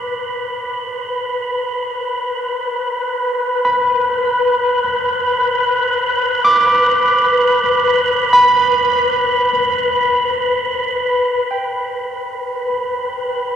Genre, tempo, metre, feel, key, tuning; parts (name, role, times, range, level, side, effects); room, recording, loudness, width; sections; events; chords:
ambient; free time; A4 = 440 Hz
barky tine electric piano; arpeggios; 0.0-13.6 s; G5 to D6; -16 LUFS; right 1 dB; cassette tape, tape echo
wind-like tuned noise texture; texture; 0.0-13.6 s; B4 to B5; -16 LUFS; left 1 dB; built-in reverb, cassette tape
wet booth ambience, RT60 0.3 s; home recording on cassette; -14 LUFS; side -9 dB against mid
0.0-11.3 A section; 11.3-13.6 B section
fade-in on tine electric piano 0.0-11.3
0.0 Bm; 11.3 G